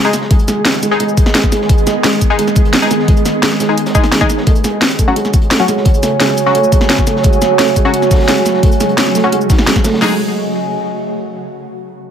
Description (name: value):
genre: dark technical drum and bass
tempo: 173 BPM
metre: 4/4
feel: straight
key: G# phrygian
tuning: A4 = 440 Hz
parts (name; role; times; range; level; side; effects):
- swarming drone; sustained chords; 0.0-10.2 s; C#3 to G#4; -19 LUFS; right 1 dB; built-in reverb, phaser, sidechain pumping
- felt-muted upright piano; arpeggios; 0.0-10.2 s; G#3 to D#4; -19 LUFS; right 2 dB; sidechain pumping, low-pass filter, dub echo
- band-passed chord stab; stabs; 0.0-10.1 s; F#3 to G#4; -18 LUFS; left 3 dB; chorus, dub echo
- drum and bass drum kit; drums; 0.0-9.9 s; hi-hat, shaker, snare drum; -15 LUFS; equal; overdrive
- warbly tape-like pad; texture; 0.2-11.4 s; F#4 to G#5; -19 LUFS; right 3 dB; chorus, built-in reverb, sidechain pumping
- crunchy breakbeat drum kit; drums; 0.1-10.0 s; hi-hat, snare drum; -28 LUFS; equal; none
- drum and bass drum kit; drums; 0.3-10.1 s; crash cymbal, kick drum, snare drum; -12 LUFS; equal; overdrive
room: moderate digital room reverb, RT60 1.2 s, digital ambience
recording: none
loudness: -10 LUFS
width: side -8 dB against mid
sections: 0.0-10.0 A section; 10.0-11.4 B section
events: filter sweep on felt piano 0.0-10.0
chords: 0.0 G#m; 4.5 F#m; 10.0 G#5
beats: | 0.31 0.65 1.00 1.35 | 1.69 2.04 2.39 2.73 | 3.08 3.43 3.77 4.12 | 4.47 4.82 5.16 5.51 | 5.86 6.20 6.55 6.90 | 7.24 7.59 7.94 8.28 | 8.63 8.98 9.32 9.67 | 10.02 10.37 10.71 11.06